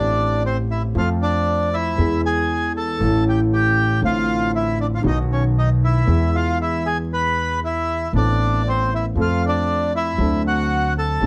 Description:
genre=tango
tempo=117 BPM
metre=4/4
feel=rubato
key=A minor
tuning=A4 = 440 Hz
part: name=bandoneon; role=melody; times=0.0-11.3 s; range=C4 to B5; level=-24 LUFS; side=equal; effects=none
part: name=warm concert grand piano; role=accompaniment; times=0.0-11.3 s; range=G1 to A4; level=-23 LUFS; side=equal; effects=none
part: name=upright bass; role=bass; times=0.0-11.3 s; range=G1 to F2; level=-28 LUFS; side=equal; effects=none
room=light reverb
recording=close, detailed microphones, vinyl crackle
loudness=-20 LUFS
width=mono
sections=0.0-11.3 A section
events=none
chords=0.0 Am7; 1.0 F; 2.0 E; 3.0 A; 4.0 Dm7/A; 5.0 B; 6.1 E; 8.1 Amadd9; 9.2 F; 10.2 D7

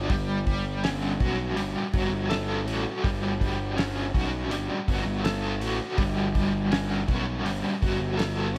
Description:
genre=psychedelic rock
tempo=82 BPM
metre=4/4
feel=straight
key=unclear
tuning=A4 = 441 Hz
part: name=overdriven electric guitar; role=riff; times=0.0-8.6 s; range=G3 to A4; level=-31 LUFS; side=equal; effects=tremolo
part: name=fuzz picked electric bass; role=bass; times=0.0-8.6 s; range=G1 to B1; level=-32 LUFS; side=equal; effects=overdrive
part: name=cloth-damped thuddy drum kit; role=drums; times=0.1-8.4 s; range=hi-hat, kick drum, snare drum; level=-31 LUFS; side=equal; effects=none
room=small room ambience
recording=none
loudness=-27 LUFS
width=mono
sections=0.0-8.6 A section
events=none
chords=0.1 F#m/G

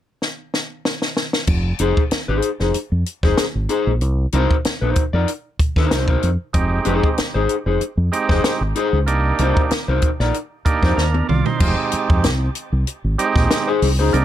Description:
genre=funk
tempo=95 BPM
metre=4/4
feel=straight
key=F dorian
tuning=A4 = 441 Hz
part: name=compact cocktail drum kit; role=drums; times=0.2-14.2 s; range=crash cymbal, hi-hat, kick drum, snare drum, toms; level=-20 LUFS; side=equal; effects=none
part: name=fingered electric bass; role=bass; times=1.5-14.2 s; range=F1 to F2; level=-19 LUFS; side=equal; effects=none
part: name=electric guitar at the edge of break-up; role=accompaniment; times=1.8-14.1 s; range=Eb4 to D5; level=-20 LUFS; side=left 4 dB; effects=none
part: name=overdriven tonewheel organ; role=stabs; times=6.5-14.2 s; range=G3 to D5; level=-22 LUFS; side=right 5 dB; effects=tape echo
room=little or no reverb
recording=none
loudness=-16 LUFS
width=side -11 dB against mid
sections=0.0-1.5 A section; 1.5-11.6 B section; 11.6-14.2 C section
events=drum fill 0.2-1.5, 11.0-11.6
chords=0.0 N.C.; 1.5 Fm7; 4.0 Cm7; 6.5 Fm7; 9.1 Cm7; 11.6 Fm7

